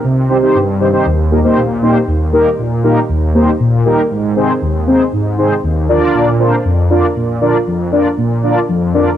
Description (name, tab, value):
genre	pop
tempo	118 BPM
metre	4/4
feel	straight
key	unclear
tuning	A4 = 440 Hz
part	mellow synth brass	solo	0.0-9.1 s	Eb2 to D5	-11 LUFS	equal	chorus, analog delay
room	light reverb, digital ambience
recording	dry, gritty hardware recording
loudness	-11 LUFS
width	side -10 dB against mid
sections	0.0-2.1 A section; 2.1-9.2 B section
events	none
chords	0.0 Cm; 1.1 Eb; 4.1 Ab; 5.9 Bb